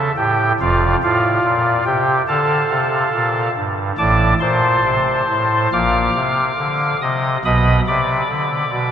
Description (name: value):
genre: classical, chorale-style piece for pipe organ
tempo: 70 BPM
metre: 4/4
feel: rubato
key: unclear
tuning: A4 = 440 Hz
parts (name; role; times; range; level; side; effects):
- pipe organ, soft reed; solo; 0.0-8.9 s; F1 to F6; -14 LUFS; equal; none
room: wet cathedral reverb, RT60 6.1 s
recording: none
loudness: -14 LUFS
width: side -9 dB against mid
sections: 0.0-8.9 A section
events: none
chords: 0.0 A7; 0.6 Dm/F; 4.0 Amadd11; 5.7 Bb; 7.4 Bm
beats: | 0.57 1.43 2.28 3.12 | 3.97 4.83 5.73 6.58 | 7.44 8.28